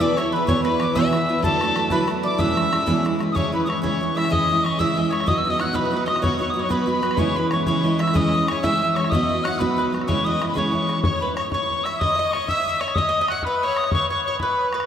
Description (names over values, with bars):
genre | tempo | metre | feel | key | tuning
celtic folk, Celtic jig | 125 BPM (dotted quarters) | 6/8 | straight | E mixolydian, C# minor from 3.4 s | A4 = 440 Hz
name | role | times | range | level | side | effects
tin whistle | melody | 0.0-14.7 s | A5 to F#6 | -23 LUFS | left 1 dB | none
clear fiddle | second line | 0.0-14.9 s | A4 to F#5 | -29 LUFS | left 4 dB | none
mandolin | second line | 0.0-14.9 s | A4 to F#5 | -29 LUFS | right 2 dB | none
picked steel-string acoustic guitar | accompaniment | 0.0-11.0 s | E2 to G#4 | -23 LUFS | right 1 dB | none
bodhran | percussion | 0.0-14.9 s | none | -28 LUFS | left 2 dB | none
room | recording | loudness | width
wet cathedral reverb, RT60 6.0 s | in a vast, echoing space | -19 LUFS | side -9 dB against mid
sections
0.0-3.4 A section; 3.4-11.0 B section; 11.0-14.9 B section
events
none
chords
0.0 E; 1.4 Dadd9; 2.4 E6; 3.4 C#m; 5.3 B; 7.2 C#m; 9.1 B; 10.1 C#m; 11.0 N.C.